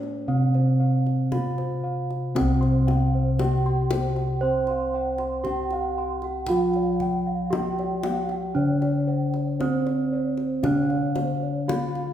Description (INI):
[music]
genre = Javanese gamelan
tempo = 58 BPM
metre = 4/4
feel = straight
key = C pelog barang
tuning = A4 = 440 Hz
[part]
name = gamelan-type bronze metallophone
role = melody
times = 0.0-12.1 s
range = C4 to C5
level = -27 LUFS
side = right 2 dB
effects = none
[part]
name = gamelan-type bronze metallophone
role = accompaniment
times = 0.0-12.1 s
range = C3 to C4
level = -27 LUFS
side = left 2 dB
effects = none
[part]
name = gamelan-type bossed gongs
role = arpeggios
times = 0.0-12.1 s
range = C5 to C6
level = -32 LUFS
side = right 1 dB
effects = none
[part]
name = gamelan-type bossed gongs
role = bass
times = 0.0-11.8 s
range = C2 to A4+20c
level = -28 LUFS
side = equal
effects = none
[part]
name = kendang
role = percussion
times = 0.0-12.1 s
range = none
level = -32 LUFS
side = left 3 dB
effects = none
[part]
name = gamelan-type bronze metallophone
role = arpeggios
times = 2.4-12.1 s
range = C5 to C6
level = -33 LUFS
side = right 4 dB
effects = none
[sound]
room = wet recital hall reverb, RT60 1.6 s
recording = recorded in a church or concert hall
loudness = -22 LUFS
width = side -10 dB against mid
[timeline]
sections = 0.0-2.4 A section; 2.4-12.1 A section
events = none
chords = none